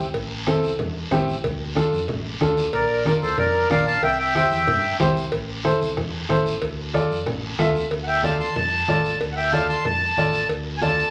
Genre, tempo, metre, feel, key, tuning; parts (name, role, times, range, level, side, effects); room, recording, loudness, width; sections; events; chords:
latin, cumbia; 185 BPM; 4/4; straight; D minor; A4 = 441 Hz
warm upright piano; accompaniment; 0.0-11.0 s; C4 to E5; -27 LUFS; equal
fingered electric bass; bass; 0.0-11.0 s; A1 to G2; -34 LUFS; equal
bombo; percussion; 0.1-7.8 s; -39 LUFS; equal
congas; percussion; 0.1-11.0 s; -29 LUFS; equal
cowbell and timbales; percussion; 0.1-10.7 s; -33 LUFS; equal
guiro; percussion; 0.1-11.1 s; -36 LUFS; equal
accordion; melody; 2.7-5.0, 8.0-11.1 s; A4 to C6; -23 LUFS; equal
moderate large studio reverb, RT60 0.8 s; -22 LUFS; mono
0.0-7.9 A section; 7.9-11.1 B section
accordion solo 7.9-11.1
0.1 Am; 1.4 Dm; 2.7 Bb; 4.0 C; 5.3 Am; 6.6 Dm